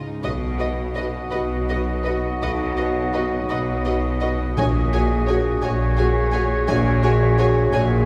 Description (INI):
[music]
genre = cinematic, emotional film score for orchestra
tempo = 56 BPM (dotted quarters)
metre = 6/8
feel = rubato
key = unclear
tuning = A4 = 440 Hz
[part]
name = warm chamber violin section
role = second line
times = 0.0-7.8 s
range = D#4 to Db5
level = -37 LUFS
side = equal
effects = none
[part]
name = dark concert grand piano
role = accompaniment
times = 0.0-8.1 s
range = Bb1 to E#5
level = -27 LUFS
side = equal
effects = none
[part]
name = dark symphonic viola section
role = accompaniment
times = 0.0-7.8 s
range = F#4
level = -33 LUFS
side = equal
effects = none
[part]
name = warm symphonic violin section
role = melody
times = 0.2-7.8 s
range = D#5 to Ab5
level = -34 LUFS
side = equal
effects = none
[part]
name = clear clarinet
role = second line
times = 0.2-8.1 s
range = F#4 to Gb4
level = -33 LUFS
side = equal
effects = none
[part]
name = mellow large flute ensemble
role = second line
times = 0.2-8.1 s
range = F#5 to Ab5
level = -36 LUFS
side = equal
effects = none
[part]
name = warm oboe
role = second line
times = 0.2-8.1 s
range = Db5 to D#5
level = -34 LUFS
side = equal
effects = none
[part]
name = mellow French horn section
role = sustained chords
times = 0.2-8.1 s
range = F#3 to Ab4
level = -32 LUFS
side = equal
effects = none
[part]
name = dark symphonic double bass section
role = bass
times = 0.2-8.1 s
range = Bb1 to B1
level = -27 LUFS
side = equal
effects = none
[part]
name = rich chamber cello section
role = bass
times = 0.2-8.1 s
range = Bb2 to B2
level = -29 LUFS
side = equal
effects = none
[part]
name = timpani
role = percussion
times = 4.6-5.6 s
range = Bb2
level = -32 LUFS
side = equal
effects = none
[sound]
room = wet scoring stage reverb, RT60 2.0 s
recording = heard from further back in the room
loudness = -21 LUFS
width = mono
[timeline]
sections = 0.2-8.1 A section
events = none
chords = 0.2 B; 4.6 Gbadd9/Bb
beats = | 0.23 1.33 | 2.42 3.50 | 4.58 5.63 | 6.69 7.74